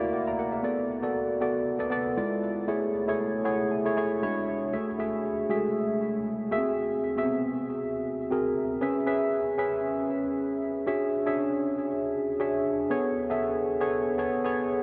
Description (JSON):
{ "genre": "pop", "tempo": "117 BPM", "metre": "4/4", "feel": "swing 54% on 16ths", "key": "A major", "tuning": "A4 = 439 Hz", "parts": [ { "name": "mellow tine electric piano", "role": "solo", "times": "0.0-14.8 s", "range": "G#3 to D6", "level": "-28 LUFS", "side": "equal", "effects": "analog chorus, delay" } ], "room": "wet huge ambient reverb, RT60 8.3 s", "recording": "dreamy mix soaked in reverb", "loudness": "-28 LUFS", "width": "mono", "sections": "0.0-4.7 A section; 4.7-12.9 B section; 12.9-14.8 C section", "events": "tine electric piano fill 3.2-4.7", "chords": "0.0 F#7b13; 0.6 Bm7; 2.2 E7b9; 2.7 Amaj7; 4.2 E13; 4.7 F#m9; 6.5 G#7b13; 8.8 C#m7; 10.9 E13; 12.9 Amaj9" }